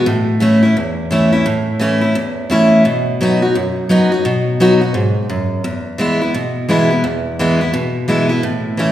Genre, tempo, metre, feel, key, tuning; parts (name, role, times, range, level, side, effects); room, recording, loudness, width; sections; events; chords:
country; 172 BPM; 4/4; swing 62% on 8ths; E major; A4 = 439 Hz
picked steel-string acoustic guitar; solo; 0.0-8.9 s; E2 to F#4; -13 LUFS; equal
wet recital hall reverb, RT60 1.8 s; heard from further back in the room; -13 LUFS; side -12 dB against mid
0.0-5.6 A section; 5.6-8.9 B section
0.1 A; 2.9 B; 5.6 E